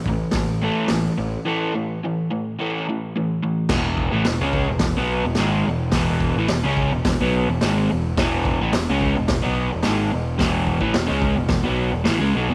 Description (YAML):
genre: garage rock duo or trio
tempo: 108 BPM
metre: 4/4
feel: straight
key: E major from 3.7 s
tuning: A4 = 441 Hz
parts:
  - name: crunchy overdriven guitar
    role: riff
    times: 0.0-12.5 s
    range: E2 to C#4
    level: -24 LUFS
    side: equal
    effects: none
  - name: fuzz picked electric bass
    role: bass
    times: 0.1-12.5 s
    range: E1 to C#2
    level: -28 LUFS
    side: equal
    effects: overdrive
  - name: raw garage drum kit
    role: drums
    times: 0.1-12.2 s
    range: crash cymbal, hi-hat, kick drum, snare drum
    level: -27 LUFS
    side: equal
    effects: none
room: light reverb, studio reverb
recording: none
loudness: -21 LUFS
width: mono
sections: 0.0-3.7 A section; 3.7-12.5 B section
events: break 1.5-3.7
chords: 0.0 A5; 3.7 E